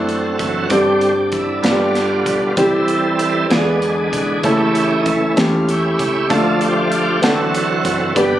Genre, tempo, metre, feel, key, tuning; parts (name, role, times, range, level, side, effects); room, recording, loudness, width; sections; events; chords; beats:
slow gospel; 64 BPM (dotted quarters); 6/8; straight; A4 = 439 Hz
clear upright piano; accompaniment; 0.0-8.4 s; G2 to B4; -18 LUFS; equal
bright tonewheel organ; sustained chords; 0.0-8.4 s; D3 to B4; -18 LUFS; right 2 dB; slow rotary speaker, overdrive, chorus vibrato
warm French horn section; sustained chords; 0.0-8.4 s; D3 to E5; -29 LUFS; left 1 dB
hollow-body short-scale fingered electric bass; bass; 0.0-8.4 s; F#1 to F#2; -27 LUFS; equal
modern studio drum kit; drums; 0.1-8.3 s; hi-hat, kick drum, snare drum; -22 LUFS; equal
light reverb; recorded on a phone in the room, studio reverb, compression; -14 LUFS; side -12 dB against mid
0.0-8.4 A section
tonewheel organ solo 0.0-8.4
0.0 D7; 0.7 Gsus4; 1.6 G; 2.6 C; 3.5 E7; 4.4 A/C#; 6.3 Dm; 7.2 D7
| 0.71 1.64 | 2.58 3.51 | 4.44 5.37 | 6.30 7.23 | 8.16